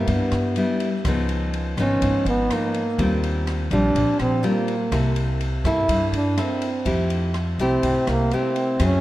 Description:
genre	bossa nova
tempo	124 BPM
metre	4/4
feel	straight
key	unclear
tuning	A4 = 435 Hz
part	mellow trombone	melody	0.0-9.0 s	Bb3 to E4	-23 LUFS	right 1 dB	tape echo
part	nylon-string guitar	accompaniment	0.0-9.0 s	G2 to A4	-24 LUFS	left 2 dB	none
part	upright bass	bass	0.0-9.0 s	Ab1 to G2	-24 LUFS	equal	none
part	open jazz drum kit	drums	0.1-8.9 s	kick drum, ride cymbal, rim click	-31 LUFS	equal	none
room	moderate lush hall reverb, RT60 2.5 s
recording	dreamy mix soaked in reverb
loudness	-19 LUFS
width	side -15 dB against mid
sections	0.0-9.0 A section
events	trombone solo 0.0-9.0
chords	0.0 Cmaj7 (rootless); 1.0 Db9; 3.0 Eb69; 4.9 C6; 6.9 Fmaj9

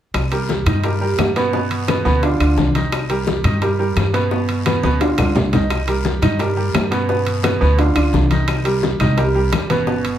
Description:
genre	latin, salsa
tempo	173 BPM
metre	4/4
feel	straight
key	C minor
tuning	A4 = 440 Hz
part	upright bass	bass	0.1-10.2 s	G1 to G2	-20 LUFS	equal	none
part	bongos	percussion	0.1-10.0 s	none	-27 LUFS	left 5 dB	none
part	claves	percussion	0.1-9.7 s	none	-33 LUFS	left 3 dB	none
part	congas	percussion	0.1-10.2 s	none	-23 LUFS	left 3 dB	none
part	guiro	percussion	0.1-10.2 s	none	-35 LUFS	left 4 dB	none
part	timbales	percussion	0.1-10.2 s	none	-26 LUFS	right 2 dB	none
part	bright upright piano	accompaniment	0.3-10.2 s	B2 to Eb5	-19 LUFS	right 2 dB	none
room	wet studio reverb, RT60 0.7 s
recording	heard from further back in the room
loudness	-15 LUFS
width	side -11 dB against mid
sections	0.1-10.2 A section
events	drum fill 4.7-5.7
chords	0.1 Cm7; 1.5 G7; 2.9 Cm7; 4.3 G7; 5.7 Cm7; 7.1 G7; 8.5 Cm7

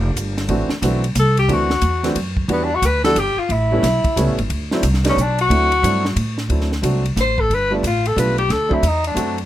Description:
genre	jazz, small-group swing and bop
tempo	180 BPM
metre	3/4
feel	swing 64% on 8ths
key	D mixolydian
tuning	A4 = 440 Hz
part	warm baby grand piano	accompaniment	0.0-9.4 s	E3 to F#4	-22 LUFS	right 1 dB	none
part	upright bass	bass	0.0-9.5 s	F1 to A2	-20 LUFS	equal	none
part	compact cocktail drum kit	drums	0.2-9.4 s	hi-hat, kick drum, ride cymbal, snare drum	-25 LUFS	equal	none
part	warm tenor saxophone	melody	1.2-9.4 s	B3 to C5	-19 LUFS	left 2 dB	none
room	little or no reverb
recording	none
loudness	-16 LUFS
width	side -13 dB against mid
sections	0.0-6.5 A section; 6.5-9.5 A section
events	tenor saxophone solo 0.0-9.5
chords	0.5 D9; 2.5 Em7; 3.5 A9; 4.5 D9; 5.2 Bm; 5.5 D9; 6.2 N.C.; 6.5 D9; 7.5 G9; 8.5 D9

